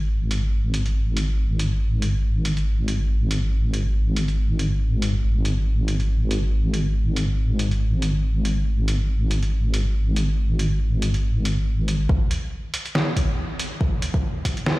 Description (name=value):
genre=deep dubstep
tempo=140 BPM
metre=4/4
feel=swing 55% on 16ths, half-time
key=unclear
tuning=A4 = 440 Hz
part: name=deep soft wobble bass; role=bass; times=0.0-12.1 s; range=G#1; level=-20 LUFS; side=equal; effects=chorus
part: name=trip hop sampler-style drum kit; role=drums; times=0.3-14.8 s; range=hi-hat, snare drum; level=-29 LUFS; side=equal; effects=overdrive, small room reverb
part: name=electronic kick drum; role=drums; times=12.1-14.5 s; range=none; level=-22 LUFS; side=equal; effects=small room reverb
room=little or no reverb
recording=played on a big sound system in a bare room, large studio reverb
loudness=-20 LUFS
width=side -19 dB against mid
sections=0.0-12.1 A section; 12.1-14.8 B section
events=build-up 12.1-14.8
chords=none